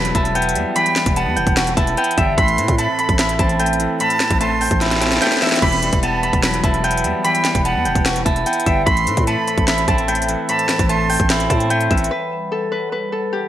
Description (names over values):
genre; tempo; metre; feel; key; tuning
hip hop, trap; 148 BPM; 4/4; half-time; E minor; A4 = 443 Hz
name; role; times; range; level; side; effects
Celtic harp; melody; 0.0-13.5 s; E4 to B5; -20 LUFS; right 1 dB; low-pass filter, digital delay
semi-hollow electric guitar; accompaniment; 0.0-12.1 s; A2 to F#4; -22 LUFS; left 2 dB; low-pass filter
hollow soft pad; sustained chords; 0.0-13.5 s; E3 to F#5; -29 LUFS; right 1 dB; chorus
growling 808-style bass; bass; 0.0-12.1 s; E1 to A2; -22 LUFS; equal; none
trap drum kit; drums; 0.0-12.1 s; crash cymbal, hi-hat, kick drum, snare drum; -19 LUFS; equal; gated reverb
silver concert flute; second line; 0.8-11.3 s; F#5 to C6; -25 LUFS; right 4 dB; digital delay
room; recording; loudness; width
light reverb, digital ambience; bright 1980s-style digital production; -15 LUFS; side -12 dB against mid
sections
0.0-12.1 A section; 12.1-13.5 B section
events
drum fill 4.8-5.6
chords
0.0 Emadd9; 2.4 Am; 5.6 Emadd9; 8.9 Am; 12.1 Emadd9